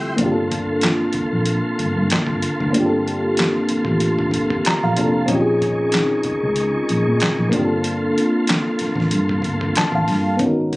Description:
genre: R&B, neo-soul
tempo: 94 BPM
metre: 4/4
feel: swing 54% on 16ths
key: G minor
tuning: A4 = 440 Hz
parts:
  - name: mellow FM electric piano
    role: accompaniment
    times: 0.0-10.8 s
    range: Bb3 to Bb5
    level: -19 LUFS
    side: equal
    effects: chorus
  - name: tonewheel organ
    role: sustained chords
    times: 0.0-10.4 s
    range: Bb3 to Db6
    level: -28 LUFS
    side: equal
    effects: slow rotary speaker, chorus vibrato
  - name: vintage muted fingered electric bass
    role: bass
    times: 0.0-10.8 s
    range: F1 to Bb2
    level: -23 LUFS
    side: equal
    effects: none
  - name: dusty soul sampler-style drum kit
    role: drums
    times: 0.2-10.8 s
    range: handclaps, hi-hat, kick drum, snare drum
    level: -23 LUFS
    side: equal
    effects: none
room: light reverb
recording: recorded on a phone in the room, club reverb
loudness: -16 LUFS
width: side -20 dB against mid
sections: 0.0-10.4 A section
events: FM electric piano fill 4.3-5.3, 9.4-10.4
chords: 0.2 Gm11; 5.3 Bbm11; 7.5 Gm11

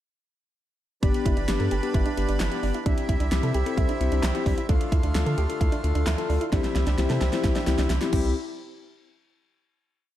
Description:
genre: synth-pop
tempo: 131 BPM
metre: 4/4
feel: straight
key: C major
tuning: A4 = 440 Hz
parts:
  - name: bell-like tine electric piano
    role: accompaniment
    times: 1.0-8.3 s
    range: B3 to A4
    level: -29 LUFS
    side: left 7 dB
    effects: phaser
  - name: accordion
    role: sustained chords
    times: 1.0-8.3 s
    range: C3 to B4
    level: -32 LUFS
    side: equal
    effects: none
  - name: soft round pluck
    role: arpeggios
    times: 1.0-8.3 s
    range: C4 to A4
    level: -34 LUFS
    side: right 5 dB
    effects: chorus, tape echo
  - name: round analog bass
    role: bass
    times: 1.0-8.3 s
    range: G1 to D3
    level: -26 LUFS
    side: equal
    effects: none
  - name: pop drum kit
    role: drums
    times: 1.0-8.2 s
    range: crash cymbal, handclaps, hi-hat, kick drum, snare drum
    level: -26 LUFS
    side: equal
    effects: none
room: light reverb, digital ambience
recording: dark, warm production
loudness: -22 LUFS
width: side -12 dB against mid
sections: 1.0-8.4 chorus; 8.4-10.2 final hit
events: drum fill 6.5-8.4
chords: 1.0 G; 2.9 C; 4.7 Dm; 6.5 C; 8.4 N.C.

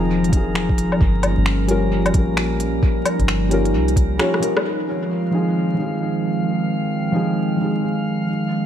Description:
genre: future garage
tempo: 132 BPM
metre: 4/4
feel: swing 62% on 16ths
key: F minor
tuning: A4 = 440 Hz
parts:
  - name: felt-muted upright piano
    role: accompaniment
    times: 0.0-8.3 s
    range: F3 to Db5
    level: -23 LUFS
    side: left 2 dB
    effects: sidechain pumping, analog delay
  - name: warbly tape-like pad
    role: sustained chords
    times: 0.0-8.7 s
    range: Eb3 to G5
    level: -22 LUFS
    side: right 1 dB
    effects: chorus, built-in reverb, sidechain pumping
  - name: soft 808-style bass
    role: bass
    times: 0.0-4.2 s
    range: F1 to C2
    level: -22 LUFS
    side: equal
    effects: tube saturation, sidechain pumping
  - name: drifting glass-harmonics texture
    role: texture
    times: 0.0-8.7 s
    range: Bb4 to F5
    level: -32 LUFS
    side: left 1 dB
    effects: chorus, built-in reverb
  - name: organic electronic drum kit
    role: drums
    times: 0.2-4.6 s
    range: finger snaps, hi-hat, rim click, woodblock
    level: -25 LUFS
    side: left 1 dB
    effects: overdrive, dub echo
  - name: electronic kick drum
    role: drums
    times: 0.3-4.1 s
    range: none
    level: -18 LUFS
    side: equal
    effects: overdrive
room: moderate echo chamber reverb, RT60 1.6 s, digital ambience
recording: echo-heavy mix, vinyl crackle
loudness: -17 LUFS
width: side -10 dB against mid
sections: 0.0-4.6 A section; 4.6-8.7 B section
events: drum fill 4.2-4.6; band accent 4.5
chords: 0.0 Fm7; 1.0 Gm7b5; 4.6 Fm7

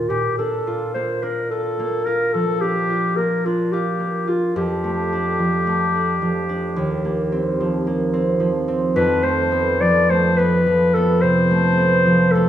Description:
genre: classical, impressionist duo for clarinet and harp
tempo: 54 BPM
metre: 4/4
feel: rubato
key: Bb major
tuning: A4 = 440 Hz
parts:
  - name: warm clarinet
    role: melody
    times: 0.0-12.5 s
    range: F4 to D5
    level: -20 LUFS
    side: left 2 dB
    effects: none
  - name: concert harp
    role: accompaniment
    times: 0.0-12.5 s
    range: Eb2 to F4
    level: -19 LUFS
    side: right 1 dB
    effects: none
room: moderate recital hall reverb, RT60 1.4 s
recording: dark, warm production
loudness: -17 LUFS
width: side -11 dB against mid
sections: 0.1-12.5 A section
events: none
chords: 0.1 Bb; 4.6 F69; 6.8 Eb69; 9.0 F

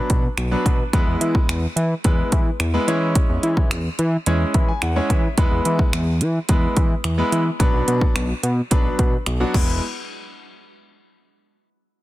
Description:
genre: dance-pop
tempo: 108 BPM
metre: 4/4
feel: straight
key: E mixolydian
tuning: A4 = 439 Hz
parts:
  - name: clear concert grand piano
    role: accompaniment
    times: 0.0-9.8 s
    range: F#3 to B5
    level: -24 LUFS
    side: equal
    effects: sidechain pumping
  - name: fat analog bass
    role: bass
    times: 0.1-9.8 s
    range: E1 to E3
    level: -21 LUFS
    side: equal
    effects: sidechain pumping
  - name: house drum kit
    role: drums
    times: 0.1-9.7 s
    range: crash cymbal, finger snaps, hi-hat, kick drum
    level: -20 LUFS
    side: equal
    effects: soft clipping on snare
room: little or no reverb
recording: dense, heavily limited modern master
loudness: -17 LUFS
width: side -16 dB against mid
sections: 0.0-9.8 A section; 9.8-12.0 B section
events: grand piano fill 4.3-5.4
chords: 0.0 Bm; 0.9 E; 2.9 C#m/E; 5.4 E; 7.6 Bm; 9.5 E; 9.8 N.C.

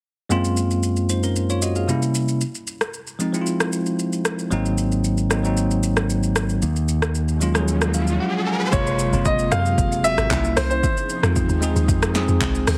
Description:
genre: amapiano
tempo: 114 BPM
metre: 4/4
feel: straight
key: unclear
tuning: A4 = 440 Hz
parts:
  - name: bell-like tine electric piano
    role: accompaniment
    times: 0.3-12.8 s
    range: Gb2 to Ab5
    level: -24 LUFS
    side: equal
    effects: none
  - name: deep house drum kit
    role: drums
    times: 0.3-12.8 s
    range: handclaps, hi-hat, kick drum, rim click, shaker, snare drum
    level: -27 LUFS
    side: equal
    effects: overdrive
  - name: modern bright fingered electric bass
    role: bass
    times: 4.5-8.2 s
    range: Ab1 to Eb2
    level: -24 LUFS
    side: equal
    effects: none
  - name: riser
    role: sound effects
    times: 7.4-8.7 s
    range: none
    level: -31 LUFS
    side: equal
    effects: none
  - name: warm grand piano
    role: melody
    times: 8.7-12.2 s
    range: C5 to F5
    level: -26 LUFS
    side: equal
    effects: delay
  - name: airy breathy pad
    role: sustained chords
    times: 9.2-12.8 s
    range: C3 to Ab4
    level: -33 LUFS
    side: equal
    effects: none
  - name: deep log drum bass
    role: bass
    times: 8.7-12.8 s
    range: Gb1 to Gb2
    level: -25 LUFS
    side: equal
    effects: none
room: light reverb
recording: heavily compressed radio sound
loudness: -21 LUFS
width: mono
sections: 0.3-8.7 A section; 8.7-12.8 B section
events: riser 7.4-8.7; tine electric piano fill 7.7-8.7; drop 8.7-12.8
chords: 0.3 Gbmaj9#11; 1.9 C7b9; 2.4 Fm7; 4.5 Ab9; 6.6 Ebm11; 8.7 Gbmaj9#11; 10.3 C7b9; 10.8 Fm7

